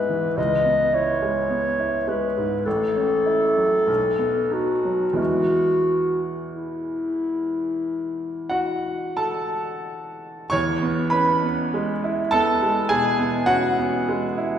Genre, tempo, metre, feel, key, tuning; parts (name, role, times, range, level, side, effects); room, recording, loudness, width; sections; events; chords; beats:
classical, romantic duo for clarinet and grand piano; 44-55 BPM; 4/4; rubato; E major; A4 = 438 Hz
mellow clarinet; melody; 0.0-9.2 s; E4 to D#5; -21 LUFS; left 1 dB
clear baby grand piano; accompaniment; 0.0-14.6 s; A1 to C#6; -23 LUFS; right 1 dB
wet scoring stage reverb, RT60 1.7 s; heard from further back in the room; -20 LUFS; side -9 dB against mid
0.0-10.5 A section; 10.5-14.6 B section
0.4 C#m7; 2.7 F#m7/A; 3.9 B7; 5.2 E
| 0.37 1.49 2.65 3.89 | 5.19 6.53 7.85 9.19 | 10.51 11.72 12.89 14.06